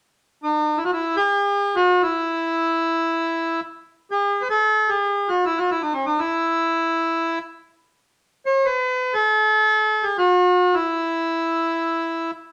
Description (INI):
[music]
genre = arabic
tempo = free time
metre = none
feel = none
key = E maqam huzam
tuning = A4 = 440 Hz
[part]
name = accordion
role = melody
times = 0.4-12.3 s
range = C4+50c to C5+50c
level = -21 LUFS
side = equal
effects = none
[sound]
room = wet studio reverb, RT60 0.8 s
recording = none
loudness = -21 LUFS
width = mono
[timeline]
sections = 0.0-12.5 A section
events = none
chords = none